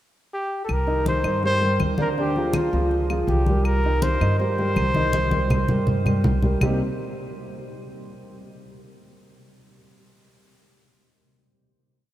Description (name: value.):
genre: Afro-Cuban jazz.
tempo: 162 BPM.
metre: 4/4.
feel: straight.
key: C minor.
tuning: A4 = 440 Hz.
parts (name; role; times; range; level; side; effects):
mellow trumpet; melody; 0.3-6.2 s; F4 to C5; -26 LUFS; equal; none.
upright bass; bass; 0.7-6.8 s; C2 to G2; -24 LUFS; equal; none.
claves; percussion; 0.7-6.7 s; none; -38 LUFS; left 5 dB; none.
congas; percussion; 0.7-6.7 s; none; -27 LUFS; left 1 dB; none.
warm concert grand piano; accompaniment; 0.9-6.8 s; C3 to Eb5; -26 LUFS; right 1 dB; none.
room: wet cathedral reverb, RT60 5.7 s.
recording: in a vast, echoing space.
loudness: -19 LUFS.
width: side -13 dB against mid.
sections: 0.0-0.7 pickup bar; 0.7-6.6 A section; 6.6-8.1 final chord.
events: drum fill 5.1-6.6.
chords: 0.0 N.C.; 0.7 Cm7; 2.2 Ddim; 2.9 Db; 3.7 Cm7.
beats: 0.32 | 0.69 1.06 1.43 1.80 | 2.17 2.54 2.91 3.28 | 3.65 4.02 4.39 4.76 | 5.13 5.50 5.87 6.24 | 6.61.